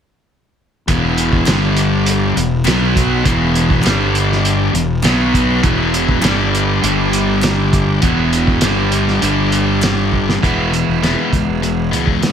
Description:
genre	classic rock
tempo	101 BPM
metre	4/4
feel	straight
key	unclear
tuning	A4 = 440 Hz
part	bright tonewheel organ	sustained chords	0.9-10.4 s	B3 to D5	-26 LUFS	equal	slow rotary speaker, overdrive, chorus vibrato
part	overdriven semi-hollow guitar	riff	0.9-12.3 s	E2 to E4	-18 LUFS	right 10 dB	none
part	sludgy distorted guitar	riff	0.9-12.3 s	E2 to B3	-17 LUFS	left 9 dB	overdrive
part	fuzz fingered electric bass	bass	0.9-12.2 s	E1 to C#2	-20 LUFS	equal	overdrive
part	cloth-damped thuddy drum kit	drums	0.9-12.3 s	hi-hat, kick drum, snare drum	-18 LUFS	right 1 dB	none
part	group handclap	percussion	1.5-10.0 s	none	-30 LUFS	left 5 dB	none
room	moderate large studio reverb, RT60 1.1 s, small room ambience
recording	none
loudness	-12 LUFS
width	side -8 dB against mid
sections	0.9-10.4 A section; 10.4-12.3 B section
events	drum fill 10.1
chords	0.9 E; 1.5 G5; 2.4 E5; 2.7 B5; 3.3 E; 3.9 G5; 4.7 E5; 5.0 B5; 5.6 E; 6.2 G5; 8.0 E; 8.6 G5; 10.4 E

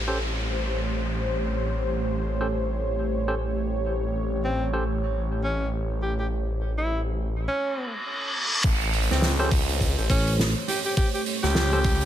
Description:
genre	glitch hop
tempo	103 BPM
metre	4/4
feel	swing 59% on 16ths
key	unclear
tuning	A4 = 440 Hz
part	dark analog pad	sustained chords	0.0-12.1 s	A3 to C#5	-31 LUFS	right 1 dB	chorus, sidechain pumping
part	phased detuned saw bass	bass	0.0-12.1 s	A1 to C#2	-27 LUFS	equal	phaser, tube saturation
part	downlifter and reverse cymbal	sound effects	0.0-8.6 s	none	-30 LUFS	equal	none
part	barky tine electric piano	stabs	0.1-4.8, 9.4-11.8 s	C#4 to B#4	-31 LUFS	right 1 dB	sidechain pumping, low-pass filter, digital delay
part	mellow tenor saxophone	melody	4.4-12.1 s	B#3 to G4	-30 LUFS	equal	digital delay
part	electronic kick drum	drums	8.6-12.0 s	none	-23 LUFS	equal	none
part	soft-mallet drum kit	drums	8.6-12.1 s	crash cymbal, hi-hat, snare drum	-27 LUFS	right 3 dB	none
part	fingered electric bass	bass	10.1-10.5 s	A1	-24 LUFS	equal	tube saturation
room	light reverb, small room ambience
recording	none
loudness	-23 LUFS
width	side -11 dB against mid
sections	0.0-8.6 A section; 8.6-12.1 B section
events	reverse cymbal 7.8-8.6; drop 8.6-12.1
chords	0.0 A7#9

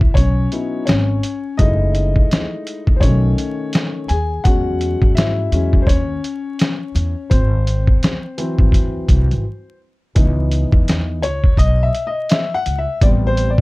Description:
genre	hip hop, jazz-hop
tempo	84 BPM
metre	4/4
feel	swing 61% on 16ths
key	C# minor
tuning	A4 = 441 Hz
part	dark grand piano	accompaniment	0.0-13.6 s	D#3 to G#5	-21 LUFS	left 2 dB	none
part	upright bass	bass	0.0-13.6 s	F#1 to G#2	-18 LUFS	equal	none
part	trip hop sampler-style drum kit	drums	0.0-13.6 s	hi-hat, kick drum, snare drum	-15 LUFS	equal	vintage 12-bit sampler grit
room	little or no reverb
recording	dark, warm production, vinyl crackle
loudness	-14 LUFS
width	side -21 dB against mid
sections	0.0-10.2 A section; 10.2-13.6 B section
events	grand piano solo 0.0-10.2, 10.2-13.6; break 9.4-10.2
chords	0.0 C#m11; 1.6 F#m9; 3.0 B7; 4.5 E6; 7.3 G#aug7; 10.2 C#m7; 13.0 Am7

